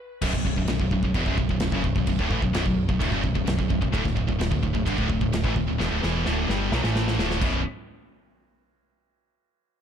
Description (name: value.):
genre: heavy metal.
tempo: 129 BPM.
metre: 4/4.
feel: straight.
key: B minor.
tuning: A4 = 440 Hz.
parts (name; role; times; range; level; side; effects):
distorted electric guitar; riff; 0.2-7.6 s; B1 to A3; -30 LUFS; equal; overdrive.
high-gain distorted guitar; riff; 0.2-7.6 s; B1 to A3; -30 LUFS; left 10 dB; distortion.
high-gain distorted guitar; riff; 0.2-7.6 s; B1 to A3; -30 LUFS; right 10 dB; distortion.
growling picked electric bass; bass; 0.2-7.6 s; B0 to B1; -28 LUFS; equal; overdrive.
big rock drum kit; drums; 0.2-7.5 s; crash cymbal, kick drum, snare drum; -27 LUFS; equal; none.
room: small room ambience.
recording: dark, warm production.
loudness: -22 LUFS.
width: side -8 dB against mid.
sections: 0.2-7.7 A section; 7.7-9.5 B section.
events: stop 0.0; drum fill 5.8-7.7.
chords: 0.2 Bm; 3.9 D5; 7.4 B5; 7.7 N.C..